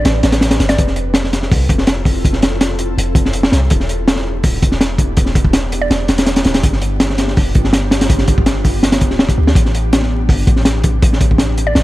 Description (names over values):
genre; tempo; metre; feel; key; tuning
drum and bass, jungle; 164 BPM; 4/4; straight; A minor; A4 = 440 Hz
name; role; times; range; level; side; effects
mallet-like synth pluck; melody; 0.0-0.8, 5.8-6.0, 11.7-11.8 s; D5; -22 LUFS; right 1 dB; chorus, dub echo
ethereal airy pad; sustained chords; 0.0-11.8 s; B3 to B4; -23 LUFS; equal; ensemble chorus, built-in reverb
warm 808-style bass; bass; 0.0-11.8 s; D1 to D2; -17 LUFS; equal; tube saturation
crunchy breakbeat drum kit; drums; 0.1-11.8 s; hi-hat, kick drum, snare drum; -13 LUFS; equal; none
room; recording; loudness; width
studio reverb; vinyl crackle; -11 LUFS; side -17 dB against mid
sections
0.0-11.8 A section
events
none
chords
0.0 Am11; 0.8 Fmaj7; 3.7 Em7; 6.6 G7; 9.6 Am11